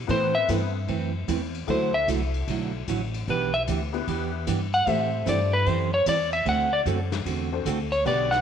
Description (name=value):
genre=country, western swing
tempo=151 BPM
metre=4/4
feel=swing 66% on 8ths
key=unclear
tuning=A4 = 439 Hz
part: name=upright bass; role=bass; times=0.0-8.4 s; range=A1 to A2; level=-29 LUFS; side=left 1 dB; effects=none
part: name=clean lap steel guitar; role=melody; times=0.1-8.4 s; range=B4 to F#5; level=-24 LUFS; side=left 1 dB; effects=none
part: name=honky-tonk upright piano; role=accompaniment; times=0.1-8.4 s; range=A3 to C5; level=-33 LUFS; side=left 10 dB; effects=none
part: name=picked steel-string acoustic guitar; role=accompaniment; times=0.1-8.3 s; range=D3 to B4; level=-29 LUFS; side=right 9 dB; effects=none
part: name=vintage brush drum kit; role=drums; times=0.1-8.4 s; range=hi-hat, kick drum, ride cymbal, snare drum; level=-36 LUFS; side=left 7 dB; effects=none
room=moderate echo chamber reverb, RT60 1.4 s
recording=1960s-style stereo with parts hard left and right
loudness=-23 LUFS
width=side -8 dB against mid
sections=0.0-8.4 A section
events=electric slide guitar solo 0.0-8.4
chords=0.1 Amadd9; 1.7 Dadd9; 3.3 Em7; 4.9 Am7; 6.5 D7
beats=| 0.09 0.48 0.88 1.28 | 1.68 2.08 2.48 2.88 | 3.27 3.67 4.07 4.47 | 4.87 5.27 5.67 6.06 | 6.46 6.86 7.26 7.66 | 8.06